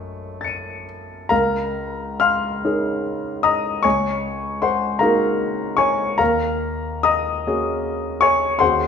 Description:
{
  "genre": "classical, impressionist solo piano",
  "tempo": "42-53 BPM (dotted quarters)",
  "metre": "6/8",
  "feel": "rubato",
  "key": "Db major",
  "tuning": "A4 = 439 Hz",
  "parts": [
    { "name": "warm concert grand piano", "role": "solo", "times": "0.0-8.9 s", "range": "Db2 to Eb7", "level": "-18 LUFS", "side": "left 2 dB", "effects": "none" }
  ],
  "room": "wet recital hall reverb, RT60 1.5 s",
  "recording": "minimal, uncompressed stereo recording",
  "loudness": "-18 LUFS",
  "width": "side -6 dB against mid",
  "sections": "0.0-1.3 A section; 1.3-8.9 B section",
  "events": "none",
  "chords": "0.0 Gbm6; 1.3 Db69; 3.8 Ab9sus4/Db; 6.2 Ebm11"
}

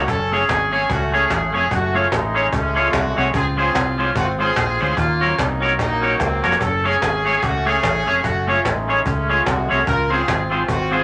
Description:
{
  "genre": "ska",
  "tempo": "147 BPM",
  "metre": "4/4",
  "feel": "swing 58% on 8ths",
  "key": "unclear",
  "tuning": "A4 = 440 Hz",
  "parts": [
    { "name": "clear horn section", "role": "melody", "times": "0.0-11.0 s", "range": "Gb3 to Bb4", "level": "-23 LUFS", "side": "equal", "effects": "none" },
    { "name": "fingered electric bass", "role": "bass", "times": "0.0-11.0 s", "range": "F1 to Eb2", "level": "-27 LUFS", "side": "equal", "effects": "none" },
    { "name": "cajon", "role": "drums", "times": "0.1-11.0 s", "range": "none", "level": "-26 LUFS", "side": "equal", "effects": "none" },
    { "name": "clean electric guitar", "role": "accompaniment", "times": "0.3-11.0 s", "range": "Ab3 to Db5", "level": "-22 LUFS", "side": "equal", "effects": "warbly pitch drift, tape echo" }
  ],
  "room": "wet studio reverb, RT60 0.6 s",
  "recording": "none",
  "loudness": "-19 LUFS",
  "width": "mono",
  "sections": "0.0-11.0 A section",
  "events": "drum fill 6.2-6.6",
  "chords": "0.1 Gbmadd9; 3.3 Dbmaj7; 5.0 Ebm7; 6.6 Gbmadd9; 9.9 Dbmaj7"
}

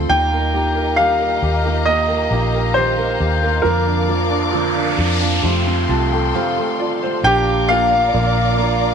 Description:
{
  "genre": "pop ballad",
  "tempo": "67 BPM",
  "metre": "4/4",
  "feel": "straight",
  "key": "Bb major",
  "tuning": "A4 = 440 Hz",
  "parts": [
    { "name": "felt-muted upright piano", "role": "accompaniment", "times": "0.0-8.9 s", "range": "Eb3 to A5", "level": "-22 LUFS", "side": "right 2 dB", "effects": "none" },
    { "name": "rich studio string section", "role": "sustained chords", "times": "0.0-8.9 s", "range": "G4 to D6", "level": "-24 LUFS", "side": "left 6 dB", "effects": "none" },
    { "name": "picked steel-string acoustic guitar", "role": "arpeggios", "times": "0.0-8.9 s", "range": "F2 to A4", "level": "-26 LUFS", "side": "right 12 dB", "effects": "none" },
    { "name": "vintage muted fingered electric bass", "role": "bass", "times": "0.0-8.9 s", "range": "Bb1 to F2", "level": "-20 LUFS", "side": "left 1 dB", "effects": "none" },
    { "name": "clear concert grand piano", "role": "melody", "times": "0.1-8.9 s", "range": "F4 to G5", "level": "-18 LUFS", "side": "left 1 dB", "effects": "none" },
    { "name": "noise sweep", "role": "sound effects", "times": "4.2-7.2 s", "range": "none", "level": "-25 LUFS", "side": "equal", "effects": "none" },
    { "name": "warm studio violin section", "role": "second line", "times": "7.3-8.9 s", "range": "D4 to D5", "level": "-24 LUFS", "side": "right 12 dB", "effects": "none" }
  ],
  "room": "moderate plate reverb, RT60 2.5 s",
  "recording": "1960s-style stereo with parts hard left and right",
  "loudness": "-15 LUFS",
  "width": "side -7 dB against mid",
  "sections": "0.0-7.2 A section; 7.2-8.9 B section",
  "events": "noise sweep 4.2-7.2; felt piano fill 5.4-7.2; break 6.3-7.2",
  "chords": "0.1 Ebadd9; 3.7 Bb/F; 5.4 Fadd9; 7.2 Bb"
}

